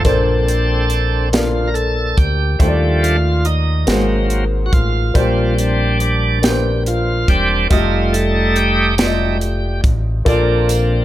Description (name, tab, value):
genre	slow gospel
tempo	47 BPM (dotted quarters)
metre	6/8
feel	straight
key	Bb major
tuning	A4 = 440 Hz
part	dark upright piano	accompaniment	0.0-11.0 s	Ab2 to Eb5	-20 LUFS	left 2 dB	none
part	bright tonewheel organ	sustained chords	0.0-11.0 s	F3 to Bb4	-19 LUFS	right 2 dB	slow rotary speaker, overdrive
part	deep dub fingered electric bass	bass	0.0-11.0 s	E1 to Eb2	-18 LUFS	equal	none
part	crisp fusion drum kit	drums	0.0-10.9 s	hi-hat, kick drum, snare drum	-18 LUFS	equal	none
part	tambourine	percussion	10.3-11.0 s	none	-31 LUFS	right 6 dB	none
room	little or no reverb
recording	none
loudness	-13 LUFS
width	side -14 dB against mid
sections	0.1-11.0 A section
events	tonewheel organ solo 0.1-11.0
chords	0.1 Bbmaj9; 2.6 Ebmaj9#11; 3.9 Ab9; 5.2 Bb69; 7.7 F9; 10.3 Bbmaj7